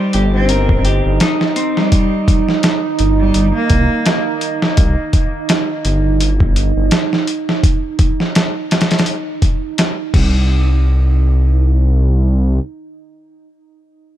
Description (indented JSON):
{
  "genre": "trip hop",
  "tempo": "84 BPM",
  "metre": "4/4",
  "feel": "swing 56% on 16ths",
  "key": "C minor",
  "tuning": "A4 = 439 Hz",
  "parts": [
    { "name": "rich cello", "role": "melody", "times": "0.0-4.2 s", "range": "G3 to C4", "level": "-20 LUFS", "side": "equal", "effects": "vintage 12-bit sampler grit, dub echo" },
    { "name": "deep dark ambient pad", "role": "sustained chords", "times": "0.0-10.1 s", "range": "Eb4", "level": "-21 LUFS", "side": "right 6 dB", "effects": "chorus, built-in reverb" },
    { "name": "clean electric guitar", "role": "arpeggios", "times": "0.0-1.9 s", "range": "C4 to C5", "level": "-22 LUFS", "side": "left 4 dB", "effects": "dub echo" },
    { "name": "dark detuned saw bass", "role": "bass", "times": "0.1-12.6 s", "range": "G1 to C2", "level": "-13 LUFS", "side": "equal", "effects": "tube saturation" },
    { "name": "dusty soul sampler-style drum kit", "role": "drums", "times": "0.1-10.3 s", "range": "crash cymbal, hi-hat, kick drum, snare drum", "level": "-15 LUFS", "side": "equal", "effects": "overdrive" }
  ],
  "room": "little or no reverb",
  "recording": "dark, warm production",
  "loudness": "-12 LUFS",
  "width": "side -12 dB against mid",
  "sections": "0.0-10.5 A section; 10.5-13.3 B section",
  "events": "none",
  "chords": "0.0 Cm; 4.8 Cm/G (rootless); 10.1 N.C."
}